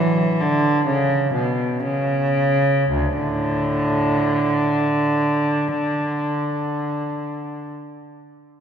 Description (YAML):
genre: classical, baroque-style suite movement for unaccompanied cello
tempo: 54-68 BPM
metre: 4/4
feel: rubato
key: unclear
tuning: A4 = 440 Hz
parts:
  - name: warm cello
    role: solo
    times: 0.0-7.7 s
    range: D2 to E3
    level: -18 LUFS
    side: equal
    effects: none
room: wet church reverb, RT60 3.2 s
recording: none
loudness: -18 LUFS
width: side -8 dB against mid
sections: 0.0-2.9 A section; 2.9-7.1 B section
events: slowing down 0.0-2.9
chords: none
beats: 0.87 1.85 | 2.92 3.97 5.02 6.06